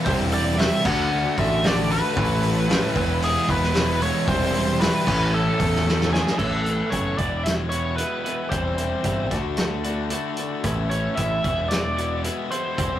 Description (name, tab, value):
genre	quiet-loud alternative rock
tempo	113 BPM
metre	4/4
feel	straight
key	A major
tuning	A4 = 440 Hz
part	mellow tonewheel organ	sustained chords	0.0-6.4 s	G4 to E6	-38 LUFS	equal	none
part	cranked stack guitar	riff	0.0-13.0 s	A2 to A4	-29 LUFS	left 7 dB	overdrive
part	thick fuzz guitar	riff	0.0-6.4 s	A2 to F#4	-26 LUFS	right 4 dB	distortion
part	biting lead guitar	melody	0.1-13.0 s	G#4 to F#5	-26 LUFS	equal	overdrive
part	growling picked electric bass	bass	0.1-13.0 s	E1 to E2	-26 LUFS	equal	overdrive
part	loose indie drum kit	drums	0.1-12.9 s	crash cymbal, hi-hat, kick drum, snare drum	-26 LUFS	equal	none
part	twelve-string electric guitar	arpeggios	6.4-13.0 s	E2 to G4	-30 LUFS	right 3 dB	none
room	moderate studio reverb, RT60 0.5 s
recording	rough rehearsal-room recording, warm saturation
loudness	-20 LUFS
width	side -12 dB against mid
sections	0.0-6.4 A section; 6.4-13.0 B section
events	drum fill 5.9-6.4; half time 6.4-13.0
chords	0.1 C/E; 0.9 Dadd9; 2.2 Aadd9; 3.0 Eadd9; 4.3 C/E; 5.1 A; 6.4 Aadd9; 7.2 Eadd9; 8.5 C/E; 9.3 Dadd9; 10.7 Aadd9; 11.5 Eadd9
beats	| 0.07 0.59 1.12 1.64 | 2.17 2.70 3.22 3.75 | 4.28 4.80 5.33 5.86 | 6.39 6.92 7.45 7.99 | 8.52 9.05 9.58 10.12 | 10.65 11.19 11.72 12.25 | 12.79